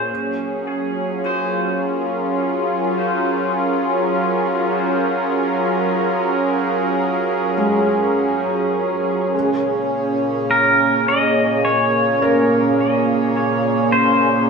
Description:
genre	ambient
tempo	52 BPM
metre	4/4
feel	straight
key	unclear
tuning	A4 = 440 Hz
part	pedal steel guitar	melody	0.0-0.1, 10.5-14.5 s	Bb4 to Eb5	-20 LUFS	left 1 dB	dub echo
part	warm analog pad	sustained chords	0.0-14.5 s	Bb2 to Bb4	-18 LUFS	right 1 dB	chorus
part	felt-muted upright piano	arpeggios	0.0-14.5 s	Ab3 to Eb6	-25 LUFS	left 1 dB	dub echo
part	hand-pumped harmonium	drone	9.3-14.5 s	Db3 to Db4	-24 LUFS	equal	none
room	wet spring reverb, RT60 2.5 s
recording	echo-heavy mix, studio ambience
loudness	-16 LUFS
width	side -5 dB against mid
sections	0.0-9.3 A section; 9.3-14.5 B section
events	none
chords	0.1 Gbmaj7; 9.3 Bbm7

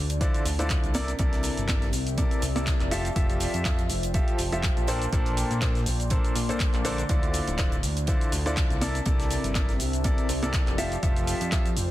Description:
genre	piano house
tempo	122 BPM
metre	4/4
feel	swing 55% on 16ths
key	unclear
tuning	A4 = 440 Hz
part	fat analog bass	bass	0.0-11.9 s	D1 to Bb2	-30 LUFS	equal	sidechain pumping
part	warbly tape-like pad	texture	0.0-11.9 s	Bb3 to D6	-35 LUFS	left 1 dB	chorus, built-in reverb, sidechain pumping
part	damped 70s drum kit	drums	0.1-11.9 s	hi-hat, snare drum	-43 LUFS	right 4 dB	none
part	punchy analog drum machine	drums	0.1-11.9 s	handclaps, hi-hat, shaker	-33 LUFS	equal	none
part	bright concert grand piano	riff	0.2-11.7 s	Bb2 to E5	-30 LUFS	equal	sidechain pumping, dub echo
part	electronic kick drum	drums	0.2-11.6 s	none	-26 LUFS	equal	none
room	small room ambience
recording	dense, heavily limited modern master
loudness	-23 LUFS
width	side -15 dB against mid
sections	0.0-11.9 A section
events	none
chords	0.0 Dm9; 0.9 Fmaj9; 4.9 Bbmaj9; 7.1 Dm9; 8.8 Fmaj9

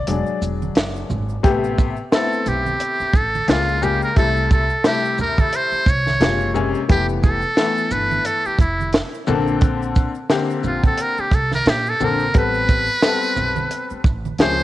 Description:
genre	hip hop, jazz-hop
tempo	88 BPM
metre	4/4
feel	swing 58% on 16ths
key	unclear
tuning	A4 = 440 Hz
part	clear upright piano	accompaniment	0.0-14.6 s	C3 to D5	-22 LUFS	left 5 dB	cassette tape
part	upright bass	bass	0.1-14.6 s	E1 to Bb2	-25 LUFS	right 1 dB	none
part	compact cocktail drum kit	drums	0.1-14.6 s	hi-hat, kick drum, shaker, snare drum	-18 LUFS	right 1 dB	vintage 12-bit sampler grit, cassette tape
part	maracas and congas	percussion	0.1-14.6 s	none	-32 LUFS	right 8 dB	none
part	trumpet with metal mute	melody	2.1-14.6 s	E4 to C#5	-20 LUFS	right 1 dB	cassette tape
room	light reverb, small room reverb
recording	home recording on cassette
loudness	-16 LUFS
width	side -15 dB against mid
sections	0.0-1.4 A section; 1.4-14.6 A section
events	upright piano solo 0.0-1.4; break 0.1-1.4; muted trumpet solo 1.4-14.6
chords	0.1 E7; 1.4 Am9; 3.5 C#6; 4.2 C6; 6.2 F#maj9#11; 6.9 Fmaj9#11; 9.3 Bbmaj9; 12.3 Am9

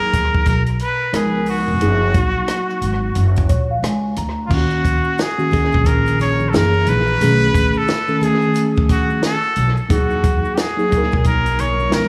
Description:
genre	hip hop, jazz-hop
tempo	89 BPM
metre	4/4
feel	swing 61% on 16ths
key	unclear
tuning	A4 = 440 Hz
part	trumpet with straight mute	melody	0.0-12.1 s	E#4 to C#5	-23 LUFS	equal	analog delay
part	mellow tine electric piano	accompaniment	0.0-12.1 s	D#3 to A#5	-22 LUFS	equal	none
part	upright bass	bass	0.0-12.1 s	E#1 to E2	-22 LUFS	equal	none
part	compact cocktail drum kit	drums	0.1-12.1 s	crash cymbal, hi-hat, kick drum, rim click, snare drum	-22 LUFS	equal	analog delay
part	maracas and congas	percussion	4.5-12.1 s	none	-35 LUFS	equal	none
room	small room ambience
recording	echo-heavy mix, studio ambience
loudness	-17 LUFS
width	mono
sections	0.0-4.5 A section; 4.5-12.1 B section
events	tine electric piano fill 3.2-4.5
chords	0.0 Emaj9#11 (rootless); 1.1 C#13; 1.8 F#maj13; 4.5 D#m7; 6.5 F#13; 7.2 B13; 9.9 Emaj9#11

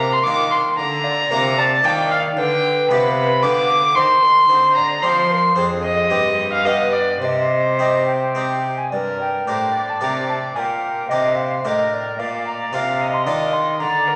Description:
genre	classical, baroque-style sonata movement with continuo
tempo	112 BPM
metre	3/4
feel	straight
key	C minor, G minor from 8.9 s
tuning	A4 = 440 Hz
part	mellow hollow tenor recorder	melody	0.0-14.2 s	G4 to C6	-25 LUFS	equal	none
part	dark violin	second line	0.0-14.2 s	Bb4 to D6	-21 LUFS	equal	none
part	harpsichord	accompaniment	0.0-14.2 s	F2 to Bb4	-28 LUFS	equal	none
part	rich cello	bass	0.0-14.2 s	F2 to F3	-28 LUFS	equal	none
room	wet recital hall reverb, RT60 1.6 s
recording	none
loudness	-18 LUFS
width	mono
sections	0.0-8.9 A section; 8.9-14.2 A section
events	none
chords	0.0 Bb; 2.4 G7; 4.0 Cm; 5.6 Dm7b5/F; 6.1 Cm/G; 6.7 G; 7.2 Cm; 8.9 Gm; 10.6 Gm/Bb; 12.2 Bb

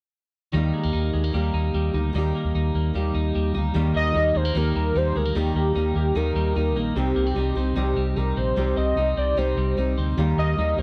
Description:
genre	indie pop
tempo	149 BPM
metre	4/4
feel	straight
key	Eb major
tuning	A4 = 440 Hz
part	fingerpicked steel-string acoustic guitar	accompaniment	0.5-10.8 s	C3 to G4	-30 LUFS	equal	none
part	twelve-string electric guitar	arpeggios	0.5-10.8 s	C3 to Eb4	-31 LUFS	equal	spring reverb, slapback echo
part	vintage muted fingered electric bass	bass	0.5-10.8 s	Bb1 to Eb2	-27 LUFS	equal	none
part	warm velvety synth lead	melody	4.0-10.8 s	G4 to Eb5	-28 LUFS	equal	chorus, slapback echo
room	little or no reverb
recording	dry, close 1970s-style studio recording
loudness	-23 LUFS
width	mono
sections	0.5-3.8 A section; 3.8-10.8 B section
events	none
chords	0.5 Eb; 7.0 Cm; 10.2 Eb

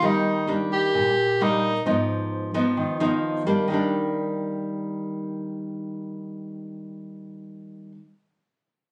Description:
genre	bossa nova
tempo	131 BPM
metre	4/4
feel	straight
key	Eb major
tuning	A4 = 442 Hz
part	bright tenor saxophone	melody	0.0-1.9 s	Eb4 to G4	-24 LUFS	equal	none
part	nylon-string guitar	accompaniment	0.0-8.0 s	Ab2 to Eb4	-27 LUFS	equal	none
room	little or no reverb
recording	recorded on a phone in the room, club reverb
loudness	-25 LUFS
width	mono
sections	0.0-3.7 A section; 3.7-7.4 B section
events	tenor saxophone solo 0.0-3.7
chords	0.0 Ebmaj7; 1.9 Abm6; 3.7 Ebmaj7

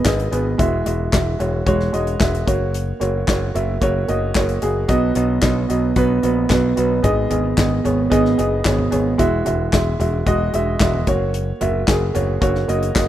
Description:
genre	piano-driven pop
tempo	112 BPM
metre	4/4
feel	straight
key	unclear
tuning	A4 = 441 Hz
part	warm upright piano	accompaniment	0.0-13.1 s	G#2 to E5	-19 LUFS	right 2 dB	none
part	modern bright picked electric bass	bass	0.1-13.1 s	E1 to B1	-22 LUFS	left 1 dB	none
part	natural country drum kit	drums	0.1-13.1 s	handclaps, hi-hat, kick drum, snare drum, toms	-21 LUFS	left 1 dB	none
room	little or no reverb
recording	rough home demo mix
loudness	-16 LUFS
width	side -12 dB against mid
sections	0.0-13.1 A section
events	none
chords	0.0 G#m; 0.6 Eadd9; 2.5 F#; 4.9 B; 7.0 G#m; 9.2 Eadd9; 11.1 F#

